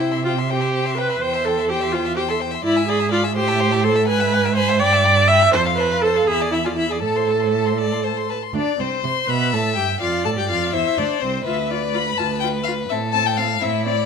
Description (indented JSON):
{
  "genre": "quick classical-period movement for string quartet",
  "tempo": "83 BPM (dotted quarters)",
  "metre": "6/8",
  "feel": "straight",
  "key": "A minor",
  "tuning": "A4 = 440 Hz",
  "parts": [
    { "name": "rich violin", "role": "melody", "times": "0.0-14.1 s", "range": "C5 to C6", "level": "-24 LUFS", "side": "left 10 dB", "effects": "none" },
    { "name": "clear violin", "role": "second line", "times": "0.0-14.1 s", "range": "E4 to G#5", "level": "-26 LUFS", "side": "left 5 dB", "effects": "none" },
    { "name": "warm viola", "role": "accompaniment", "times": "0.0-13.9 s", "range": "C4 to E5", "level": "-20 LUFS", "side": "right 2 dB", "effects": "none" },
    { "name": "rich cello", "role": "bass", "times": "0.0-14.1 s", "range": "C2 to C3", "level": "-24 LUFS", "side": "right 5 dB", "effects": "none" }
  ],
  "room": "light reverb",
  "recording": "close, detailed microphones",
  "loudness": "-17 LUFS",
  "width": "side -6 dB against mid",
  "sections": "0.0-8.5 A section; 8.5-14.1 B section",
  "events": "none",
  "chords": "0.0 C; 1.2 C/E; 2.6 E7/G#; 3.4 Am; 4.1 E/G#; 4.8 Em/G; 5.5 F; 6.3 E7; 7.0 Am; 10.0 F; 11.5 Dm; 12.9 Am"
}